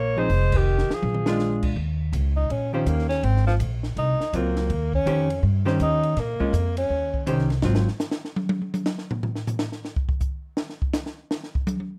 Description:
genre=jazz, small-group swing and bop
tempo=163 BPM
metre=4/4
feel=swing 64% on 8ths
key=Eb mixolydian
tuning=A4 = 438 Hz
part: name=breathy alto saxophone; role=melody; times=0.0-1.7 s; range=G4 to Db5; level=-28 LUFS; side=equal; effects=none
part: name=breathy tenor saxophone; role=second line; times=0.0-7.2 s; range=Eb3 to Eb4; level=-29 LUFS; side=equal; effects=none
part: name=upright bass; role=bass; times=0.0-7.9 s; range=F1 to Bb2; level=-26 LUFS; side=equal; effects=none
part: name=archtop guitar, miked and amplified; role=accompaniment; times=0.2-7.9 s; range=Eb3 to C5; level=-28 LUFS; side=equal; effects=none
part: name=compact cocktail drum kit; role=drums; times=0.3-11.9 s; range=crash cymbal, hi-hat, kick drum, ride cymbal, snare drum, toms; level=-30 LUFS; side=equal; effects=none
room=light reverb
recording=dark, warm production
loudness=-24 LUFS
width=mono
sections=0.0-1.8 A section; 1.8-12.0 B section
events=band accent 0.5; drum fill 0.7-1.4; tenor saxophone solo 1.8-12.0; drum solo 7.6-12.0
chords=0.3 Fm9; 1.0 Bb7; 1.8 Eb6; 3.2 Ab13; 4.7 Eb13; 6.2 Bbm7; 6.9 Eb6; 7.6 Ab6; 10.6 N.C.

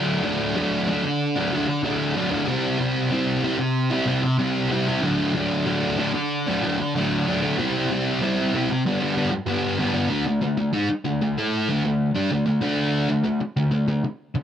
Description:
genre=rock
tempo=95 BPM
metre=4/4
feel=straight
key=D mixolydian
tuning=A4 = 435 Hz
part: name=sludgy distorted guitar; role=solo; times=0.0-14.4 s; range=G2 to A4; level=-20 LUFS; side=equal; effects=overdrive
room=little or no reverb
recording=dry, close 1970s-style studio recording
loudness=-20 LUFS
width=side -9 dB against mid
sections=0.0-10.1 A section; 10.1-14.4 B section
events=none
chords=0.0 D; 2.5 C; 5.0 D; 7.6 C; 8.8 G; 10.1 D5

